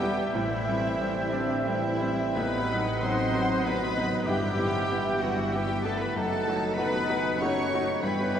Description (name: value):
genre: classical, romantic movement for piano and orchestra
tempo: 81-99 BPM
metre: 3/4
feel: rubato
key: unclear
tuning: A4 = 443 Hz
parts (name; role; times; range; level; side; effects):
- clear grand piano; melody; 0.0-8.4 s; E2 to B4; -31 LUFS; left 1 dB; none
- rich chamber violin section; melody; 0.0-8.4 s; D5 to C#6; -39 LUFS; left 2 dB; none
- clear clarinet; second line; 0.0-8.4 s; D4 to C#5; -36 LUFS; left 2 dB; none
- dark symphonic violin section; second line; 0.0-8.4 s; D5 to C#6; -38 LUFS; left 1 dB; none
- large flute ensemble; second line; 0.0-8.4 s; B4 to G#5; -39 LUFS; left 2 dB; none
- warm oboe; second line; 0.0-8.4 s; F#5 to G5; -38 LUFS; equal; none
- dark bassoon; accompaniment; 0.0-8.4 s; B3 to E4; -37 LUFS; equal; none
- warm chamber viola section; accompaniment; 0.0-8.4 s; D#3 to G4; -39 LUFS; right 1 dB; none
- dark French horn section; sustained chords; 0.0-8.4 s; D3 to C#4; -35 LUFS; left 2 dB; none
- mellow trombone section; sustained chords; 0.0-8.4 s; D#3 to D#4; -37 LUFS; right 3 dB; none
- mellow trumpet section; stabs; 0.0-8.4 s; D#5 to G5; -37 LUFS; right 2 dB; none
- warm chamber cello section; bass; 0.0-8.4 s; D4 to C#5; -33 LUFS; right 1 dB; none
- warm chamber double bass section; bass; 0.0-8.4 s; E1 to A1; -36 LUFS; right 3 dB; none
room: wet church reverb, RT60 3.7 s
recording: none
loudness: -25 LUFS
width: side -8 dB against mid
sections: 0.0-8.4 A section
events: none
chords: 0.3 Am7; 2.4 B7/A; 4.3 Em/G; 6.2 D#dim/F#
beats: | 0.34 1.00 1.65 | 2.37 3.02 3.64 | 4.26 4.89 5.53 | 6.16 6.77 7.39 | 8.02